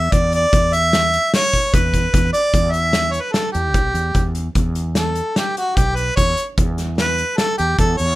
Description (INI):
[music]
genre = progressive instrumental, band music in an uneven meter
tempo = 149 BPM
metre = 5/4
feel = straight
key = E dorian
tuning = A4 = 440 Hz
[part]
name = warm harmonica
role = melody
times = 0.0-8.2 s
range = F#4 to E5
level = -18 LUFS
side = equal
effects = none
[part]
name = fretless electric bass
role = bass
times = 0.0-8.2 s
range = B1 to E2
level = -21 LUFS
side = equal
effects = lush chorus
[part]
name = loose indie drum kit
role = drums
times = 0.1-8.1 s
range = hi-hat, kick drum, snare drum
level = -19 LUFS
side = equal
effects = none
[sound]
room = light reverb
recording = rough home demo mix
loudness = -15 LUFS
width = side -17 dB against mid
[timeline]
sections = 0.0-2.5 A section; 2.5-8.2 B section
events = none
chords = 0.0 E7(no3); 2.5 Em; 6.6 E5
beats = 0.12 | 0.52 0.93 1.33 1.73 2.13 | 2.54 2.94 3.34 3.75 4.15 | 4.55 4.96 5.36 5.76 6.17 | 6.57 6.98 7.38 7.79